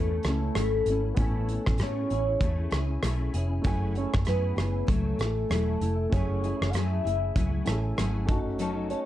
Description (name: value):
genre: indie pop, bedroom pop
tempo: 97 BPM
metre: 4/4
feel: swing 60% on 16ths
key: unclear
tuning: A4 = 439 Hz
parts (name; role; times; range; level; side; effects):
- soft octave-layered synth lead; melody; 0.0-9.1 s; A4 to F#5; -31 LUFS; equal; phaser, wide subtle chorus
- nylon-string guitar; accompaniment; 0.0-9.1 s; F#3 to A4; -34 LUFS; left 4 dB; ensemble chorus, warbly pitch drift
- warm upright piano; accompaniment; 0.0-9.1 s; A3 to G#5; -38 LUFS; right 3 dB; cassette tape
- vintage muted picked electric bass; bass; 0.0-8.9 s; E1 to A2; -29 LUFS; equal; none
- loose indie drum kit; drums; 0.2-9.1 s; hi-hat, kick drum, rim click; -29 LUFS; equal; vintage 12-bit sampler grit
room: light reverb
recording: dark, warm production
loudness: -25 LUFS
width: side -13 dB against mid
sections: 0.0-9.1 A section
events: none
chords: 0.0 Amaj7; 3.6 F#m9; 8.3 B9 (rootless)